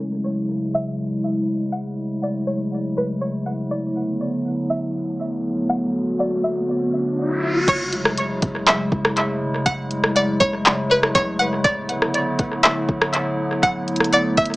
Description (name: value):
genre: hip hop, atmospheric cloud-rap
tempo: 121 BPM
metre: 4/4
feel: half-time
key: F# minor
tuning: A4 = 435 Hz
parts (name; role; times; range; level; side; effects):
- string-like resonator pluck; melody; 0.0-14.6 s; B4 to F#5; -21 LUFS; equal; chorus, phaser, tape echo
- warbly tape-like pad; sustained chords; 0.0-14.6 s; C#3 to F#4; -22 LUFS; equal; chorus, built-in reverb, sidechain pumping
- riser; sound effects; 5.9-7.7 s; none; -27 LUFS; left 1 dB; none
- soft 808-style bass; bass; 7.7-14.6 s; D1 to G#1; -36 LUFS; equal; none
- smooth R&B drum kit; drums; 7.7-14.6 s; crash cymbal, handclaps, hi-hat, kick drum, rim click; -20 LUFS; equal; tape echo
room: moderate plate reverb, RT60 1.0 s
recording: echo-heavy mix, low-pass filter, small speaker sound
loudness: -19 LUFS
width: side -20 dB against mid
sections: 0.0-7.7 A section; 7.7-14.6 B section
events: filter sweep 0.0-7.7; riser 5.9-7.7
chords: 0.0 F#m9; 3.7 D69; 7.7 F#m9; 11.6 D69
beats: 0.24 0.74 1.23 | 1.73 2.22 2.72 3.22 | 3.71 4.21 4.70 5.20 | 5.70 6.19 6.69 7.18 | 7.68 8.18 8.67 9.17 | 9.66 10.16 10.65 11.15 | 11.65 12.14 12.64 13.13 | 13.63 14.12